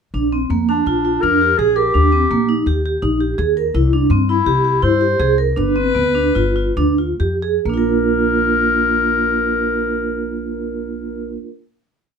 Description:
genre	contemporary instrumental, chamber music in an uneven meter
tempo	128-167 BPM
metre	5/4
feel	straight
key	Bb mixolydian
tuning	A4 = 441 Hz
part	vibraphone with medium mallets	arpeggios	0.1-11.5 s	Bb3 to Bb4	-18 LUFS	right 3 dB	none
part	upright bass	bass	0.1-11.4 s	G1 to G2	-21 LUFS	left 1 dB	none
part	mellow clarinet	melody	0.7-11.4 s	D4 to C5	-18 LUFS	left 4 dB	none
room	light reverb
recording	none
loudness	-14 LUFS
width	side -6 dB against mid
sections	0.1-7.7 A section; 7.7-12.2 final chord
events	slowing down 4.5-7.7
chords	0.1 Bb; 1.9 Eb; 3.7 C; 5.6 G; 7.7 Bb

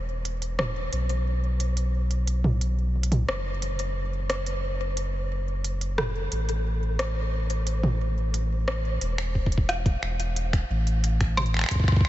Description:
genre	IDM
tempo	89 BPM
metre	4/4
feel	straight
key	unclear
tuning	A4 = 438 Hz
part	warm sub bass	bass	0.0-11.6 s	E1 to B1	-26 LUFS	equal	none
part	organic electronic drum kit	drums	0.3-12.1 s	finger snaps, hi-hat, rim click, toms	-29 LUFS	equal	ping-pong delay
part	electronic kick drum	drums	9.4-12.0 s	none	-22 LUFS	equal	none
room	light reverb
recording	nothing above 7.9 kHz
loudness	-24 LUFS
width	side -15 dB against mid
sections	0.0-9.0 A section; 9.0-12.1 B section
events	none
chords	none

